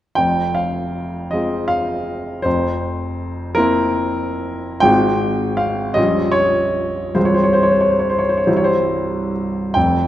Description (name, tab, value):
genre	classical, romantic nocturne for solo piano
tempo	44-56 BPM (dotted quarters)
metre	12/8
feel	rubato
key	F minor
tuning	A4 = 440 Hz
part	warm grand piano	solo	0.2-10.1 s	Bb0 to G5	-16 LUFS	equal	none
room	moderate concert hall reverb, RT60 2.1 s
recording	none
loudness	-16 LUFS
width	side -12 dB against mid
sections	0.2-10.1 A section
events	none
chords	0.2 Fm; 2.5 C7/F; 4.8 Fm/Ab; 6.0 Gm7b5/Bb; 7.2 Fm/C; 8.5 C